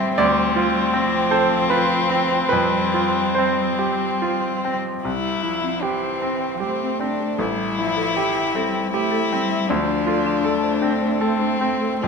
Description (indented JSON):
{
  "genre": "neoclassical piano and strings",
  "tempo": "70-80 BPM",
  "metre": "3/4",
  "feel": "rubato",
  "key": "unclear",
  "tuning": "A4 = 440 Hz",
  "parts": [
    { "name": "rich violin", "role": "melody", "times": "0.0-12.1 s", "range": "C4 to E4", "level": "-23 LUFS", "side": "left 5 dB", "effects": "none" },
    { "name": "clear cello", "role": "second line", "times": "0.0-12.1 s", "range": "E3 to A3", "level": "-26 LUFS", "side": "right 2 dB", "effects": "none" },
    { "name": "bright grand piano", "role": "accompaniment", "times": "0.0-12.1 s", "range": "A1 to E5", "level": "-22 LUFS", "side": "right 2 dB", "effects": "none" },
    { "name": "buzzing marimba with medium hard mallets", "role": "arpeggios", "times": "5.0-12.1 s", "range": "C4 to G5", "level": "-29 LUFS", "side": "left 6 dB", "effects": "none" }
  ],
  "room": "moderate concert hall reverb, RT60 2.0 s",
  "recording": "minimal, uncompressed stereo recording",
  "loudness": "-18 LUFS",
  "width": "side -5 dB against mid",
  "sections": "0.0-5.0 A section; 5.0-12.1 B section",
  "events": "none",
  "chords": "0.2 Dm7; 2.5 Fsus2; 5.0 C; 7.4 Am7; 9.7 Dm7",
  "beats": "| 0.18 0.94 1.71 | 2.53 3.38 4.22 | 5.05 5.84 6.61 | 7.39 8.16 8.92 | 9.68 10.44 11.20 | 12.01"
}